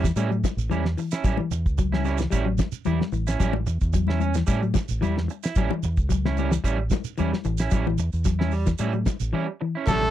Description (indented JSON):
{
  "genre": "afrobeat",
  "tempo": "111 BPM",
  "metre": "4/4",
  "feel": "straight",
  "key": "A mixolydian",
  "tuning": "A4 = 439 Hz",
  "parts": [
    { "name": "semi-hollow electric guitar", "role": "arpeggios", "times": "0.0-10.0 s", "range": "E3 to G3", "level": "-28 LUFS", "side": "left 6 dB", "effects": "none" },
    { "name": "electric guitar at the edge of break-up", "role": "stabs", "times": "0.0-10.1 s", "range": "G3 to E4", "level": "-30 LUFS", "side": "right 7 dB", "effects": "none" },
    { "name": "deep dub fingered electric bass", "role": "bass", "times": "0.0-10.1 s", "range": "A1 to A2", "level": "-25 LUFS", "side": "equal", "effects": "none" },
    { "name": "damped 70s drum kit", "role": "drums", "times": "0.0-10.1 s", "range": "crash cymbal, hi-hat, kick drum, snare drum", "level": "-25 LUFS", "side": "equal", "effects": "none" },
    { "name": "shekere", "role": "percussion", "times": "0.0-10.0 s", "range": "none", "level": "-35 LUFS", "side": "right 8 dB", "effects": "none" },
    { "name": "congas", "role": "percussion", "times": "0.2-10.1 s", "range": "none", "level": "-31 LUFS", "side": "left 16 dB", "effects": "none" },
    { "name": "bright trumpet", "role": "melody", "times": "9.9-10.1 s", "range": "A4", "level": "-22 LUFS", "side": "equal", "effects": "none" },
    { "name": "bright trombone", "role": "second line", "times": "9.9-10.1 s", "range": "A3", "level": "-30 LUFS", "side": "right 6 dB", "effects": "none" },
    { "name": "overdriven reed electric piano", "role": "accompaniment", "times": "9.9-10.1 s", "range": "B2 to C#4", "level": "-31 LUFS", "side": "right 4 dB", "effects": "none" }
  ],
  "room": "little or no reverb",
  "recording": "dry, close 1970s-style studio recording",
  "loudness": "-22 LUFS",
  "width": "side -12 dB against mid",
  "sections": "0.0-9.9 A section",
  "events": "break 9.3-9.9",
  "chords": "0.0 A7",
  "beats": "0.17 0.71 | 1.25 1.79 2.33 2.87 | 3.41 3.95 4.49 5.03 | 5.56 6.10 6.64 7.18 | 7.72 8.26 8.80 9.34 | 9.87"
}